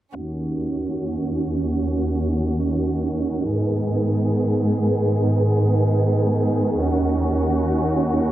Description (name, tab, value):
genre	dubstep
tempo	free time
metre	none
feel	none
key	Eb minor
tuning	A4 = 445 Hz
part	warm symphonic string section	sustained chords	0.2-8.3 s	Eb2 to Ab4	-19 LUFS	right 1 dB	none
room	moderate lush hall reverb, RT60 2.9 s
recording	dense, heavily limited modern master, low-pass filter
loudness	-19 LUFS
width	side -13 dB against mid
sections	0.2-8.3 A section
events	none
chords	0.2 Ebm7; 3.5 Abm; 6.8 Ebm7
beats	free time